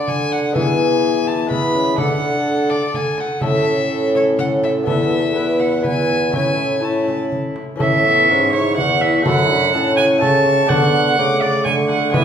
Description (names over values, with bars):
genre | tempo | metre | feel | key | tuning
classical, renaissance-style consort dance | 124 BPM | 3/4 | straight | A major | A4 = 438 Hz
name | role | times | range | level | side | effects
warm violin | melody | 0.0-12.2 s | C#5 to D6 | -24 LUFS | left 2 dB | none
warm viola | second line | 0.0-12.2 s | E4 to A5 | -19 LUFS | right 3 dB | none
lute | accompaniment | 0.0-12.2 s | E2 to D5 | -23 LUFS | left 3 dB | none
mellow trombone | accompaniment | 0.0-12.2 s | A3 to F#4 | -23 LUFS | left 1 dB | none
warm bassoon | bass | 0.0-12.2 s | E2 to E3 | -21 LUFS | equal | none
frame drum | percussion | 0.1-12.2 s | none | -24 LUFS | right 1 dB | none
room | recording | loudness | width
wet recital hall reverb, RT60 1.3 s | recorded in a church or concert hall | -14 LUFS | side -8 dB against mid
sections
0.0-7.8 A section; 7.8-12.2 A section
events
none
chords
0.0 D; 0.6 E; 2.0 D; 3.4 A; 4.9 Esus4; 5.4 E; 6.3 A; 9.3 F#m; 10.7 D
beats
0.07 | 0.55 1.03 1.51 | 1.99 2.47 2.95 | 3.43 3.91 4.39 | 4.88 5.36 5.85 | 6.34 6.83 7.32 | 7.81 8.29 8.78 | 9.26 9.74 10.22 | 10.71 11.19 11.67 | 12.15